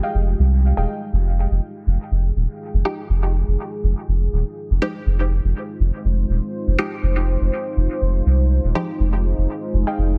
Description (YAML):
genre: dub techno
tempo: 122 BPM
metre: 4/4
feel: swing 55% on 16ths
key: F minor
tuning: A4 = 440 Hz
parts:
  - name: deep dark ambient pad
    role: sustained chords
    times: 0.0-10.2 s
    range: Ab3 to C5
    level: -31 LUFS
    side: equal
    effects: chorus, built-in reverb
  - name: warbly dusty pluck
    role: riff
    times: 0.0-0.9, 9.9-10.0 s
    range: Ab4 to G5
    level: -32 LUFS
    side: equal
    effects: chorus, dub echo
  - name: soft dub sub bass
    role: bass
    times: 0.1-10.2 s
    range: Eb1 to C2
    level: -20 LUFS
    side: equal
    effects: none
  - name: filtered dub chord stab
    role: stabs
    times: 2.9-8.9 s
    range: F3 to G4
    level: -29 LUFS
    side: equal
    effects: phaser, dub echo
room: digital ambience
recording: dense, heavily limited modern master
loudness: -21 LUFS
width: mono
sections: 0.0-1.1 A section; 1.1-10.2 A section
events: none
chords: 0.0 Fm9